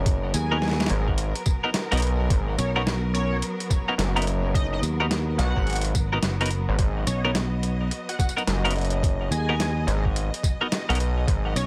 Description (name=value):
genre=glitch hop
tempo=107 BPM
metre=4/4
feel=swing 64% on 16ths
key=G# minor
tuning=A4 = 440 Hz
part: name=rich studio string section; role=sustained chords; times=0.0-11.7 s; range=F#3 to D#5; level=-36 LUFS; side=equal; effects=vintage 12-bit sampler grit, sidechain pumping
part: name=gritty driven synth bass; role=bass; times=0.0-11.5 s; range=F#1 to B1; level=-27 LUFS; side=equal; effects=distortion
part: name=boom bap sampler-style drum kit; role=drums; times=0.1-11.7 s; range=hi-hat, snare drum, tambourine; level=-32 LUFS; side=equal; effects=none
part: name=electronic kick drum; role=drums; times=0.1-11.4 s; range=none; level=-26 LUFS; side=equal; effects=none
part: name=sync lead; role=melody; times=0.3-11.7 s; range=C#5 to G#5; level=-36 LUFS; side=equal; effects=analog chorus, digital delay
part: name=fingered electric bass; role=bass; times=0.3-11.7 s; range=F#1 to D#2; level=-28 LUFS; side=equal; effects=none
part: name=twelve-string electric guitar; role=stabs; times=0.5-11.0 s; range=B3 to A#4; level=-29 LUFS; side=equal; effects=sidechain pumping, digital delay
room=light reverb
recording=none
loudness=-24 LUFS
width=mono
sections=0.0-11.7 A section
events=none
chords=0.0 G#m9